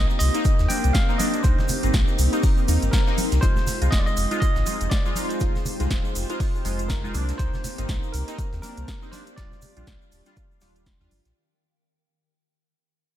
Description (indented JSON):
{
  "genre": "deep house",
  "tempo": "121 BPM",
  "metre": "4/4",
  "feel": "swing 57% on 16ths",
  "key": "F dorian",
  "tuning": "A4 = 440 Hz",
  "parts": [
    { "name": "bell-like tine electric piano", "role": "melody", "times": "0.0-10.8 s", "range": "Bb4 to G5", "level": "-32 LUFS", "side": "right 1 dB", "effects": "analog delay" },
    { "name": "warm analog pad", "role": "sustained chords", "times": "0.0-11.3 s", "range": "Ab3 to D5", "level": "-35 LUFS", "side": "left 1 dB", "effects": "chorus, sidechain pumping" },
    { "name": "warm analog keys", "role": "stabs", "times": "0.0-11.1 s", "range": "G3 to F4", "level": "-30 LUFS", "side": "left 1 dB", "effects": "chorus, phaser, vintage 12-bit sampler grit, sidechain pumping, diffuse ambient delay" },
    { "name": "sub bass with octave", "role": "bass", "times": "0.0-11.3 s", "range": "Eb1 to Eb2", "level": "-23 LUFS", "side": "equal", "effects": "sidechain pumping" },
    { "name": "granular cloud pad", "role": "texture", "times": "0.0-11.4 s", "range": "Eb3 to F5", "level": "-35 LUFS", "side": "equal", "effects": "built-in reverb, sidechain pumping" },
    { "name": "tube shaker", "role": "percussion", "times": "0.1-11.3 s", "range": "none", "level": "-38 LUFS", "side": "right 2 dB", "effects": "none" },
    { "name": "breakbeat sampler-style drum kit", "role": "drums", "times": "0.2-11.4 s", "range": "hi-hat, snare drum, tambourine", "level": "-41 LUFS", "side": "right 1 dB", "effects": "none" },
    { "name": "deep house drum kit", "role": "drums", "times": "0.2-11.3 s", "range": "hi-hat, snare drum", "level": "-32 LUFS", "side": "right 1 dB", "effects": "none" },
    { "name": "electronic kick drum", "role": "drums", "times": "0.5-11.0 s", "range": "none", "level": "-23 LUFS", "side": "equal", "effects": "none" },
    { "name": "congas", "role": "percussion", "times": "0.7-11.2 s", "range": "none", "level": "-36 LUFS", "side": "right 2 dB", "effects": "sidechain pumping on perc" }
  ],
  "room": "light reverb",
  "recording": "none",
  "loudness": "-20 LUFS",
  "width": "side -12 dB against mid",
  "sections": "0.0-11.4 A section",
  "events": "drop 0.0-11.4; fade-out 3.4-11.4",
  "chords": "0.0 Cm7; 3.4 Fm7; 7.1 Cm7; 9.4 Ebmaj9"
}